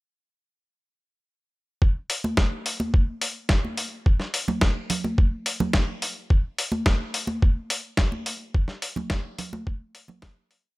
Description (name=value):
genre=nu-disco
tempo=107 BPM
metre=4/4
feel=straight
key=none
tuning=none
part: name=electronic kick drum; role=drums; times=1.8-10.3 s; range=none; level=-20 LUFS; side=equal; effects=none
part: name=dusty soul sampler-style drum kit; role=drums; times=2.1-10.6 s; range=hi-hat, snare drum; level=-26 LUFS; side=left 1 dB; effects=none
part: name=congas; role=percussion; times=2.2-10.2 s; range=none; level=-30 LUFS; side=right 1 dB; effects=none
room=digital ambience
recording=none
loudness=-22 LUFS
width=side -22 dB against mid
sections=1.8-10.8 groove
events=fade-out 7.8-10.8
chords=none